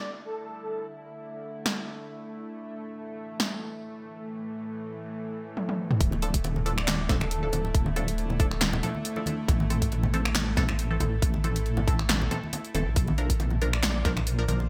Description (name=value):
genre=deep dubstep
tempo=138 BPM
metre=4/4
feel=swing 54% on 16ths, half-time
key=D minor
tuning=A4 = 440 Hz
part: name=breathy flute-like synth lead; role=melody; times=0.0-0.9, 6.8-7.8, 13.7-14.0 s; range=A4 to D5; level=-42 LUFS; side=equal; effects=ensemble chorus, cassette tape, dub echo
part: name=bowed-like drone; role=sustained chords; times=0.0-14.7 s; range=A2 to C5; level=-39 LUFS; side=equal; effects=built-in reverb
part: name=deep house drum kit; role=drums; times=1.7-14.6 s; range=finger snaps, handclaps, hi-hat, snare drum, toms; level=-32 LUFS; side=equal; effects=overdrive, gated reverb
part: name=deep soft wobble bass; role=bass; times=6.0-14.7 s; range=D1 to Bb1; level=-30 LUFS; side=equal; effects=chorus
part: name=electronic kick drum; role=drums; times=6.0-14.1 s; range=none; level=-27 LUFS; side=equal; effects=none
part: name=congas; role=percussion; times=6.1-14.7 s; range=none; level=-36 LUFS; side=equal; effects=none
part: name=filtered dub chord stab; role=stabs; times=6.2-14.6 s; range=E3 to Bb4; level=-37 LUFS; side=equal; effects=phaser, dub echo
room=light reverb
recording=bright 1980s-style digital production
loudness=-28 LUFS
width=mono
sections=0.0-6.0 A section; 6.0-14.7 B section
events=drum fill 5.6-6.0; drop 6.0-14.7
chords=0.0 D5; 2.5 A5; 6.0 Dm; 9.5 Am; 13.0 Bb